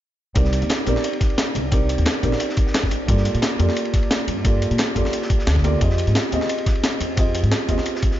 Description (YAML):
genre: liquid drum and bass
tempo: 176 BPM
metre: 4/4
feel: straight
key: C minor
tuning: A4 = 440 Hz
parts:
  - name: felt-muted upright piano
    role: accompaniment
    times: 0.3-8.2 s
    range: Bb3 to Eb5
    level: -25 LUFS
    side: right 1 dB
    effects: dub echo
  - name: upright bass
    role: bass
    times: 0.4-7.8 s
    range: Bb1 to Bb2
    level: -21 LUFS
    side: equal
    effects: none
  - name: crunchy breakbeat drum kit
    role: drums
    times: 0.4-8.2 s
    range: ride cymbal, snare drum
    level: -32 LUFS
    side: equal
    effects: high-pass filter on cymbals, high-pass filter on snare, high-pass filter on room
  - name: electronic kick drum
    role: drums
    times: 0.4-8.1 s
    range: none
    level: -20 LUFS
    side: equal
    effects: none
  - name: jungle sampler-style drum kit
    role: drums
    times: 0.4-8.1 s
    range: hi-hat, snare drum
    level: -24 LUFS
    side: equal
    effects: overdrive
room: small room ambience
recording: nothing above 7.5 kHz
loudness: -18 LUFS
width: side -13 dB against mid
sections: 0.4-8.2 A section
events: none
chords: 0.4 Cm9; 3.1 Gm9; 5.8 Fm9